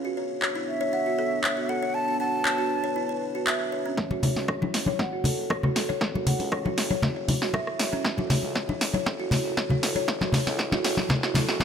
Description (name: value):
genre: afro house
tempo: 118 BPM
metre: 4/4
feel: straight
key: F# minor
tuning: A4 = 440 Hz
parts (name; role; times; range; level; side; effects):
- dark analog pad; sustained chords; 0.0-11.6 s; B3 to C#5; -35 LUFS; right 3 dB; chorus, vintage 12-bit sampler grit, sidechain pumping
- buzzing kalimba; arpeggios; 0.0-11.6 s; C#4 to F#5; -30 LUFS; left 1 dB; sidechain pumping, low-pass filter, digital delay
- house drum kit; drums; 0.4-11.6 s; handclaps, hi-hat, rim click, snare drum, toms; -28 LUFS; equal; high-pass filter on snare, high-pass filter on hats, high-pass filter on toms
- breathy mellow silver concert flute; melody; 0.7-3.2 s; E5 to A5; -28 LUFS; right 1 dB; digital delay
- smooth synth bass; bass; 4.0-11.6 s; F#1 to C#2; -38 LUFS; right 1 dB; none
- electronic kick drum; drums; 4.0-11.6 s; none; -32 LUFS; right 1 dB; high-pass filter on kick
- congas; percussion; 4.1-11.6 s; none; -27 LUFS; left 1 dB; none
room: light reverb, small room ambience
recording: none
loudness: -24 LUFS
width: side -8 dB against mid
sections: 0.0-4.0 A section; 4.0-11.6 B section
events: build-up 4.0-11.6; drum fill 4.0-11.6; filter sweep on kalimba 4.0-11.6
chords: 0.0 Bm7; 4.0 F#m7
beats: 0.42 0.93 1.44 | 1.95 2.46 2.96 3.47 | 3.98 4.49 5.00 5.51 | 6.01 6.52 7.03 7.54 | 8.05 8.56 9.07 9.57 | 10.08 10.59 11.10 11.61